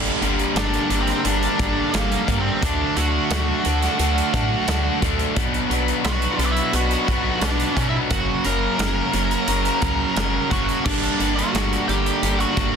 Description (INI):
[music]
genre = quiet-loud alternative rock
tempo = 87 BPM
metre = 4/4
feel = straight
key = unclear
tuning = A4 = 440 Hz
[part]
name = dark studio string section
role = sustained chords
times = 0.0-12.8 s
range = G3 to B5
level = -33 LUFS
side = left 5 dB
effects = none
[part]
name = crunchy overdriven guitar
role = riff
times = 0.0-12.8 s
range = F#2 to D4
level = -27 LUFS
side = equal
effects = none
[part]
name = distorted electric guitar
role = riff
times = 0.0-12.8 s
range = F#2 to D4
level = -26 LUFS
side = left 14 dB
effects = overdrive
[part]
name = thick fuzz guitar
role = riff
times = 0.0-12.8 s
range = F#2 to D4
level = -27 LUFS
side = right 11 dB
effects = distortion
[part]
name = woody FM bass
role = bass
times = 0.0-12.8 s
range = F#1 to B2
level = -25 LUFS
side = equal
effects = none
[part]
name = big rock drum kit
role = drums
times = 0.1-12.7 s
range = crash cymbal, hi-hat, kick drum, snare drum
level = -26 LUFS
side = right 1 dB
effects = none
[part]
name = octave-fuzz lead guitar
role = melody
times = 0.6-12.8 s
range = Bb3 to A#5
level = -25 LUFS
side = right 2 dB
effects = distortion
[sound]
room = light reverb, small room ambience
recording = dense, heavily limited modern master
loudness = -18 LUFS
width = side -7 dB against mid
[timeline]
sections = 0.0-12.8 A section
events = none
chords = 0.0 Gm; 2.6 D; 5.4 Bm; 8.1 F#; 10.9 Gm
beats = 0.56 1.25 1.94 | 2.62 3.31 3.99 4.68 | 5.37 6.05 6.74 7.42 | 8.11 8.80 9.48 10.17 | 10.86 11.54 12.23